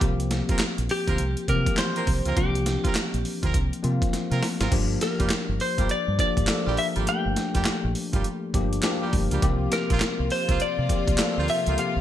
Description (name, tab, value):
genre	R&B, new jack swing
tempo	102 BPM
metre	4/4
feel	swing 62% on 16ths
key	G minor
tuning	A4 = 439 Hz
part	bright tine electric piano	accompaniment	0.0-12.0 s	E3 to A4	-29 LUFS	left 3 dB	analog chorus
part	mellow horn section	stabs	0.0-11.8 s	F3 to Bb4	-34 LUFS	right 4 dB	none
part	deep dub fingered electric bass	bass	0.0-12.0 s	F1 to C3	-27 LUFS	right 1 dB	none
part	breakbeat sampler-style drum kit	drums	0.0-11.9 s	crash cymbal, handclaps, hi-hat, kick drum, snare drum	-26 LUFS	right 1 dB	gated reverb
part	direct-recorded clean electric guitar	melody	0.9-12.0 s	G4 to G5	-28 LUFS	left 1 dB	lush chorus
part	warm studio string section	sustained chords	9.4-12.0 s	C3 to F4	-34 LUFS	left 1 dB	none
room	light reverb, digital ambience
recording	bright 1980s-style digital production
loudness	-22 LUFS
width	side -11 dB against mid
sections	0.0-4.7 A section; 4.7-12.0 B section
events	drum fill 4.1-4.7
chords	0.0 C7sus4; 4.7 Gm7; 9.4 C7sus4